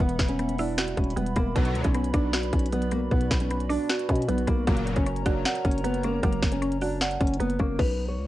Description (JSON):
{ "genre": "hip hop, trap", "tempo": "154 BPM", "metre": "4/4", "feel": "half-time", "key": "unclear", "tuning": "A4 = 440 Hz", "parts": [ { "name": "nylon-string guitar", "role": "melody", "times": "0.0-8.3 s", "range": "A#3 to C#5", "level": "-29 LUFS", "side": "equal", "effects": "digital delay" }, { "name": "mallet-like synth pluck", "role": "accompaniment", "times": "0.0-7.8 s", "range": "B2 to F#5", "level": "-31 LUFS", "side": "right 1 dB", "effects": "chorus" }, { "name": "dark analog pad", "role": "sustained chords", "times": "0.0-7.8 s", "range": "G3 to B5", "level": "-37 LUFS", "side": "right 2 dB", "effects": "chorus" }, { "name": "growling 808-style bass", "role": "bass", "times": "0.0-8.3 s", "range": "E1 to B2", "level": "-30 LUFS", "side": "equal", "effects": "none" }, { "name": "trap drum kit", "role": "drums", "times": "0.0-7.9 s", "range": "crash cymbal, hi-hat, kick drum, snare drum", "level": "-26 LUFS", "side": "equal", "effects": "vintage 12-bit sampler grit" }, { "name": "big bright polysynth", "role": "stabs", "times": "1.6-1.8, 4.7-5.0 s", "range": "A#2 to F#3", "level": "-36 LUFS", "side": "left 1 dB", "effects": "ensemble chorus, digital delay" } ], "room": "digital ambience", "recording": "worn, warbling old tape, cassette tape, warbly pitch drift", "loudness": "-23 LUFS", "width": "side -15 dB against mid", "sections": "0.0-7.8 A section", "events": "hi-hats muted 7.8-8.3", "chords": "0.0 Emadd9; 1.6 Bm; 4.7 F#" }